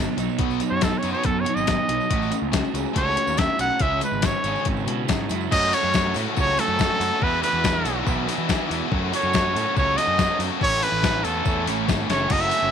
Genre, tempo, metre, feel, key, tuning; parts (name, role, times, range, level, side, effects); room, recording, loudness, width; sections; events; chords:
indie rock; 141 BPM; 4/4; straight; F# dorian; A4 = 439 Hz
biting overdriven guitar; riff; 0.0-12.7 s; A2 to F#4; -28 LUFS; left 14 dB
crunchy overdriven guitar; riff; 0.0-12.7 s; E2 to A4; -28 LUFS; right 15 dB; lush chorus
fuzz fingered electric bass; bass; 0.0-12.7 s; F#1 to E3; -29 LUFS; right 1 dB; overdrive
clean 12-bit digital drum machine; drums; 0.2-12.6 s; crash cymbal, hi-hat, kick drum, snare drum; -25 LUFS; left 3 dB
tambourine; percussion; 0.2-12.6 s; -40 LUFS; right 18 dB
brilliant trumpet; melody; 0.7-12.7 s; A4 to F#5; -24 LUFS; right 1 dB; tape echo
digital ambience; 1960s-style stereo with parts hard left and right; -20 LUFS; side -8 dB against mid
0.0-5.5 A section; 5.5-12.7 B section
trumpet solo 0.0-5.5
0.0 B; 2.1 F#madd9/A; 3.8 C#m; 5.5 F#m; 7.2 Esus2; 8.9 F#m; 10.6 A